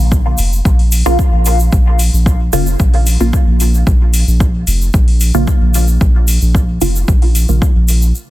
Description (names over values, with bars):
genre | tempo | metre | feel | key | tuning
dub techno | 112 BPM | 4/4 | straight | Bb minor | A4 = 440 Hz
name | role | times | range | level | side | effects
soft dub sub bass | bass | 0.0-8.1 s | F1 to Bb1 | -13 LUFS | equal | sidechain pumping
electronic kick drum | drums | 0.1-7.7 s | none | -12 LUFS | equal | overdrive, studio ambience
egg shaker | percussion | 0.1-8.3 s | none | -24 LUFS | right 1 dB | none
electronic hi-hat | drums | 0.4-8.0 s | none | -23 LUFS | left 3 dB | overdrive, studio ambience
filtered dub chord stab | stabs | 1.1-7.6 s | Db3 to F4 | -19 LUFS | right 1 dB | phaser, sidechain pumping, dub echo
room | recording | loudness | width
digital ambience | dense, heavily limited modern master | -10 LUFS | side -16 dB against mid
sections
0.0-8.3 A section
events
filter sweep on synth stab 0.0-8.3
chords
0.0 Bb5